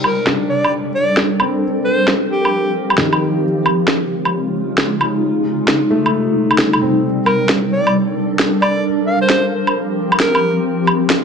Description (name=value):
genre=future garage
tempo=133 BPM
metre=4/4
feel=swing 66% on 16ths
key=unclear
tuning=A4 = 440 Hz
part: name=bright alto saxophone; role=melody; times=0.0-2.8, 7.3-10.6 s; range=G4 to F5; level=-19 LUFS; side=equal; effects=analog delay
part: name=granular cloud pad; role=sustained chords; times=0.0-11.2 s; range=C3 to Bb4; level=-17 LUFS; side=equal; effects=built-in reverb
part: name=electronic woodblock and snare drum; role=drums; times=0.0-11.2 s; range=none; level=-16 LUFS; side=equal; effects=low-pass filter on perc, low-pass filter on snare, low-pass filter on cymbals, low-pass filter on room
part: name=felt-muted upright piano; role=accompaniment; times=0.3-8.9 s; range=Eb3 to D4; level=-23 LUFS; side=left 3 dB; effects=vintage 12-bit sampler grit, tape echo
room=wet digital room reverb, RT60 1.2 s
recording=none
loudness=-13 LUFS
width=side -6 dB against mid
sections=0.0-11.2 A section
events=none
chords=0.0 Gm; 1.6 F7sus4; 3.4 Dbmaj7; 5.2 Cm; 7.0 Gm; 8.8 Fsus4; 10.6 Dbmaj7